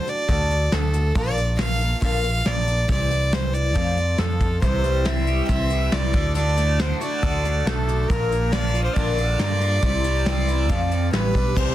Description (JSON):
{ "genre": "folk rock and heartland rock", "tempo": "138 BPM", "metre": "4/4", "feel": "straight", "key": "C mixolydian", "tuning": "A4 = 440 Hz", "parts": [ { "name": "rich fiddle", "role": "melody", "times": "0.0-11.7 s", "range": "A4 to F5", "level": "-25 LUFS", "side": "right 1 dB", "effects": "none" }, { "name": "picked twelve-string acoustic guitar", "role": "accompaniment", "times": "0.0-11.7 s", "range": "F2 to G4", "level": "-29 LUFS", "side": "left 3 dB", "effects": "none" }, { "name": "soft brush drum kit", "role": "drums", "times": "0.1-11.7 s", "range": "crash cymbal, hi-hat, kick drum, snare drum", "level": "-25 LUFS", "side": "equal", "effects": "soft clipping on snare" }, { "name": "picked electric bass", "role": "bass", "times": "0.3-11.7 s", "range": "A1 to G2", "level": "-23 LUFS", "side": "equal", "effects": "none" }, { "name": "crunchy overdriven guitar", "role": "riff", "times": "4.6-11.7 s", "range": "F2 to G4", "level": "-29 LUFS", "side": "right 2 dB", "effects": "phaser" } ], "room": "little or no reverb", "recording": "dense, heavily limited modern master", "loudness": "-19 LUFS", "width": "side -13 dB against mid", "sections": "0.0-11.6 A section", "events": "none", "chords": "0.0 D; 1.2 Bb; 2.9 C; 3.8 F; 4.6 C; 6.1 D; 8.1 Bb; 9.8 C; 10.7 F; 11.1 G", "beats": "0.29 0.72 | 1.16 1.59 2.02 2.46 | 2.89 3.33 3.76 4.19 | 4.63 5.06 5.49 5.93 | 6.36 6.79 7.23 7.66 | 8.09 8.53 8.96 9.39 | 9.83 10.26 10.69 11.12 | 11.56" }